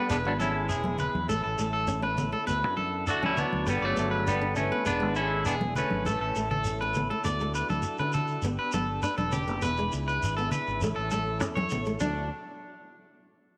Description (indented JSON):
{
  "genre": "highlife guitar band",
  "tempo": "101 BPM",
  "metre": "4/4",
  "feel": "straight",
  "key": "D major",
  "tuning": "A4 = 438 Hz",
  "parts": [
    { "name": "semi-hollow electric guitar", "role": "melody", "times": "0.0-6.6 s", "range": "F#3 to F#4", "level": "-32 LUFS", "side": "equal", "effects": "slapback echo" },
    { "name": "breathy tenor saxophone", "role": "second line", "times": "0.0-6.6 s", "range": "C#3 to A3", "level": "-40 LUFS", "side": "equal", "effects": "none" },
    { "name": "flamenco guitar", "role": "accompaniment", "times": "0.0-12.2 s", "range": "G#3 to D4", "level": "-38 LUFS", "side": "equal", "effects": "none" },
    { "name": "combo organ", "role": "sustained chords", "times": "0.0-12.3 s", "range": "B3 to A4", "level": "-42 LUFS", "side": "equal", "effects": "none" },
    { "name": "electric guitar at the edge of break-up", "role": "arpeggios", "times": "0.0-12.3 s", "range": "D4 to D5", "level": "-33 LUFS", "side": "equal", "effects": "slapback echo" },
    { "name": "fingered electric bass", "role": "bass", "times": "0.1-12.3 s", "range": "E1 to D3", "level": "-36 LUFS", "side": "equal", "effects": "none" },
    { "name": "shekere", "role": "percussion", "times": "0.1-12.3 s", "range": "none", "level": "-39 LUFS", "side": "equal", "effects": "none" },
    { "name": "congas", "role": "percussion", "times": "0.4-12.3 s", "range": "none", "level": "-37 LUFS", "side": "equal", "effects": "none" }
  ],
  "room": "moderate plate reverb, RT60 3.0 s",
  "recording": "none",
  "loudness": "-29 LUFS",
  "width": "mono",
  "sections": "0.0-7.3 A section; 7.3-12.0 B section; 12.0-13.6 C section",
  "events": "none",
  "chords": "0.1 E; 1.3 A; 2.5 Dadd9; 3.7 G; 4.9 E7; 6.1 A; 7.3 Dadd9; 8.4 G; 9.6 E7; 10.8 A; 12.0 Dadd9",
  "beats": "| 0.10 0.70 1.29 1.89 | 2.48 3.08 3.68 4.27 | 4.87 5.47 6.06 6.66 | 7.25 7.85 8.45 9.04 | 9.64 10.23 10.83 11.42 | 12.02"
}